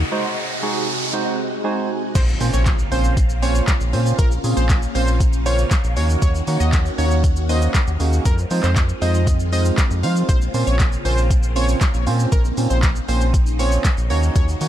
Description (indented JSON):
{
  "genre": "dance-pop",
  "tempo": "118 BPM",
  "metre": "4/4",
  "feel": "straight",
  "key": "Bb minor",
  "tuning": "A4 = 441 Hz",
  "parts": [
    { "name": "phased string machine", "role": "sustained chords", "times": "0.0-14.7 s", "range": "C3 to Gb4", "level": "-27 LUFS", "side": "equal", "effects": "ensemble chorus, phaser, sidechain pumping" },
    { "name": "round analog bass", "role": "bass", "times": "0.0-14.7 s", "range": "Bb1 to F3", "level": "-19 LUFS", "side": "equal", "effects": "sidechain pumping" },
    { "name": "riser and impact", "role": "sound effects", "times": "0.0-4.2 s", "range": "none", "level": "-27 LUFS", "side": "equal", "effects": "none" },
    { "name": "soft electric-piano-like synth keys", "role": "accompaniment", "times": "0.1-14.7 s", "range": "Ab3 to Ab5", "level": "-26 LUFS", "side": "right 4 dB", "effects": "chorus, sidechain pumping" },
    { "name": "plucky unison lead", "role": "melody", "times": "2.2-14.4 s", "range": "Bb4 to F5", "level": "-28 LUFS", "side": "equal", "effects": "sidechain pumping, ping-pong delay" },
    { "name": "smooth R&B drum kit", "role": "drums", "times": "2.2-14.7 s", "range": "crash cymbal, handclaps, hi-hat, kick drum, shaker, snare drum", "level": "-20 LUFS", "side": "equal", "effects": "none" }
  ],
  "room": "little or no reverb",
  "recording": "dark, warm production",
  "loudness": "-16 LUFS",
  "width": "side -11 dB against mid",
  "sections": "0.0-2.2 A section; 2.2-14.7 B section",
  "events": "build-up 0.0-2.2; riser 0.0-2.2; break 0.1-2.2; synth keys fill 1.4-2.2; drop 2.2-14.7; impact 2.2-4.2",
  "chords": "0.1 Ab7; 2.2 Bbmadd9; 6.0 Ebm7; 8.3 Fm7; 10.3 Bbmadd9; 14.1 Ebm7"
}